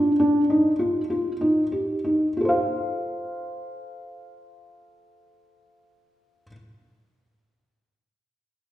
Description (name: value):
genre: contemporary instrumental, contemporary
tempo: 184-205 BPM (eighths)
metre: 7/8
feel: straight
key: F mixolydian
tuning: A4 = 439 Hz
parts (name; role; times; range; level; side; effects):
- felt-muted upright piano; arpeggios; 0.0-6.5 s; D4 to F5; -21 LUFS; equal; none
room: wet recital hall reverb, RT60 1.6 s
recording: heard from further back in the room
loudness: -21 LUFS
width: side -13 dB against mid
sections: 0.0-2.4 A section; 2.4-6.9 B section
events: slowing down 0.0-2.4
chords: 0.2 Ebadd9; 2.4 F